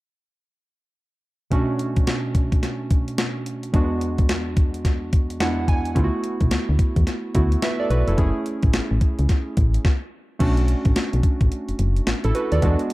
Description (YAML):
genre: R&B, new jack swing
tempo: 108 BPM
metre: 4/4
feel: swing 62% on 16ths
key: B dorian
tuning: A4 = 439 Hz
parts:
  - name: warm analog keys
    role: accompaniment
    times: 1.5-12.9 s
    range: E2 to G#5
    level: -25 LUFS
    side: right 2 dB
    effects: chorus
  - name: clean 12-bit digital drum machine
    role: drums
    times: 1.5-12.9 s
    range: crash cymbal, hi-hat, kick drum, snare drum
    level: -20 LUFS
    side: equal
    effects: none
  - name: solid FM bass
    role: bass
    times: 6.0-12.8 s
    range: E#1 to E2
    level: -20 LUFS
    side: equal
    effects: none
room: digital ambience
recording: dark, warm production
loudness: -19 LUFS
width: side -19 dB against mid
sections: 1.5-10.4 A section; 10.4-12.9 B section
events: synth keys fill 5.1-6.0; stop 9.8-10.4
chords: 1.5 Bm7; 3.7 E9; 6.0 D6; 8.2 F#m9 (rootless); 10.4 Bm7